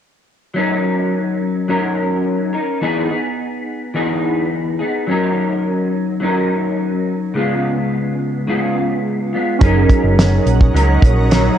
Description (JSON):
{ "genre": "indie pop, bedroom pop", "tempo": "106 BPM", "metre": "4/4", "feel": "straight", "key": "F# major", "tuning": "A4 = 439 Hz", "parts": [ { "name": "electric guitar through a small old amp", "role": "accompaniment", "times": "0.5-11.6 s", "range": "C#3 to A#4", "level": "-17 LUFS", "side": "left 1 dB", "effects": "ensemble chorus, warbly pitch drift" }, { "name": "warm analog keys", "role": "accompaniment", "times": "9.6-11.6 s", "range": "C#4 to A#4", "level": "-20 LUFS", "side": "right 7 dB", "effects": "chorus" }, { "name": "shimmering ambient pad", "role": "sustained chords", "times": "10.1-11.6 s", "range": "C#5 to D#6", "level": "-25 LUFS", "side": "right 4 dB", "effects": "chorus, built-in reverb" }, { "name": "hollow-body short-scale fingered electric bass", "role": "bass", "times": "9.6-11.5 s", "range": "F#1 to C#2", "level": "-15 LUFS", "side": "right 1 dB", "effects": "none" }, { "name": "damped 70s drum kit", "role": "drums", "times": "9.6-11.4 s", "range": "hi-hat, kick drum, snare drum", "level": "-13 LUFS", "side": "equal", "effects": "none" } ], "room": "light reverb, studio ambience", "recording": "cassette tape", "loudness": "-15 LUFS", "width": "side -9 dB against mid", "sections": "0.6-9.6 A section; 9.6-11.6 B section", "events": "none", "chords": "0.6 F#6; 2.8 Emaj7; 5.1 F#6; 7.3 C#7; 9.6 F#6" }